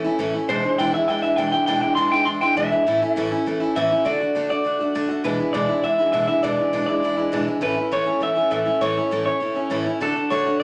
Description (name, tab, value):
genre	rock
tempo	202 BPM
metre	4/4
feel	straight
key	A major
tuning	A4 = 440 Hz
part	picked steel-string acoustic guitar	accompaniment	0.0-10.6 s	E2 to F#4	-25 LUFS	equal	none
part	electric guitar through a small old amp	melody	0.5-10.6 s	A4 to C6	-23 LUFS	equal	none
room	moderate large studio reverb, RT60 0.8 s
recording	none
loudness	-21 LUFS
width	mono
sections	0.0-4.1 A section; 4.1-10.6 B section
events	clean electric guitar solo 0.0-4.1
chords	0.5 E7; 2.9 A; 4.1 D; 5.2 E7; 7.6 A; 10.0 D